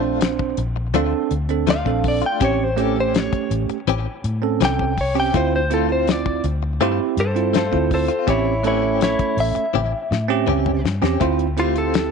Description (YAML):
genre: straight-eighth soul blues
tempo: 82 BPM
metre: 4/4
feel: straight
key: D minor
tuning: A4 = 440 Hz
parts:
  - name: bell-like tine electric piano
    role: accompaniment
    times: 0.0-12.1 s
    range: A3 to C5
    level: -22 LUFS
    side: right 14 dB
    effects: none
  - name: direct-recorded clean electric guitar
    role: stabs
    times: 0.0-12.0 s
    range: E3 to G4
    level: -26 LUFS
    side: left 13 dB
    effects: tremolo, slapback echo
  - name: vintage muted fingered electric bass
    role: bass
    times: 0.0-12.1 s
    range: A1 to A2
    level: -23 LUFS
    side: left 1 dB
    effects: none
  - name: damped 70s drum kit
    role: drums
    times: 0.2-12.1 s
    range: hi-hat, kick drum, snare drum, toms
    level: -24 LUFS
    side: left 7 dB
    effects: vintage 12-bit sampler grit
  - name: direct-recorded clean electric guitar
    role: melody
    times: 1.7-12.1 s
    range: E4 to G5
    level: -22 LUFS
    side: left 2 dB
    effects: slapback echo
room: moderate spring reverb, RT60 2.6 s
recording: 1960s-style stereo with parts hard left and right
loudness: -17 LUFS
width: side -5 dB against mid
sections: 0.0-11.2 A section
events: clean electric guitar solo 0.0-11.2; drum fill 9.7-11.2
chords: 0.0 Bbmaj7; 2.4 A7#9; 5.3 Dm7; 8.3 A7#9; 11.2 Dm7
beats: 0.22 0.95 1.68 | 2.42 3.15 3.88 4.62 | 5.35 6.08 6.81 7.55 | 8.28 9.01 9.75 10.48 | 11.21 11.95